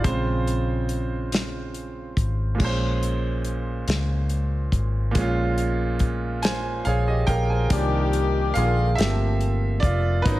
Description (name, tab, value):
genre	slow six-eight R&B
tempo	47 BPM (dotted quarters)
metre	6/8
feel	straight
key	unclear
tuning	A4 = 443 Hz
part	clear baby grand piano	accompaniment	0.0-10.4 s	Bb2 to Ab5	-26 LUFS	right 3 dB	none
part	vintage muted fingered electric bass	bass	0.0-10.4 s	F1 to Db2	-24 LUFS	left 1 dB	none
part	warm soul drum kit	drums	0.0-10.4 s	crash cymbal, hi-hat, kick drum, snare drum	-25 LUFS	left 1 dB	none
part	warm horn section	stabs	7.7-10.4 s	Cb3 to G4	-27 LUFS	left 6 dB	none
room	studio reverb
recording	none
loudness	-21 LUFS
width	side -16 dB against mid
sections	0.0-2.6 A section; 2.6-7.7 B section; 7.7-10.4 C section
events	grand piano solo 0.0-2.6, 7.7-10.4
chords	0.0 Bbm9; 7.7 Cm11; 9.0 Gm11